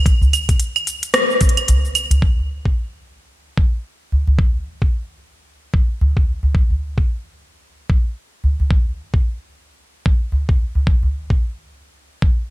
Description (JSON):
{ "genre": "downtempo", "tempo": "111 BPM", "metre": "4/4", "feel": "swing 60% on 16ths", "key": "none", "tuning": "none", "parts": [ { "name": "electronic kick drum", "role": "drums", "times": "0.1-12.4 s", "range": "none", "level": "-15 LUFS", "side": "equal", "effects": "none" }, { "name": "organic electronic drum kit", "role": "drums", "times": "0.1-2.2 s", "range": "claves, hi-hat, rim click, shaker", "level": "-18 LUFS", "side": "equal", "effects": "overdrive, slapback echo" }, { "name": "udu", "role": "percussion", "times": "0.2-11.1 s", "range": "none", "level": "-18 LUFS", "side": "equal", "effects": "none" } ], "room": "light reverb", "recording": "none", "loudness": "-16 LUFS", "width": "side -17 dB against mid", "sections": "0.0-2.2 A section; 2.2-12.5 B section", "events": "kick drops out 1.7-2.2", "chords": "none", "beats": "| 0.06 0.60 1.14 1.68 | 2.22 2.76 3.30 3.85 | 4.38 4.93 5.47 6.01 | 6.55 7.09 7.63 8.17 | 8.71 9.25 9.79 10.33 | 10.87 11.41 11.95" }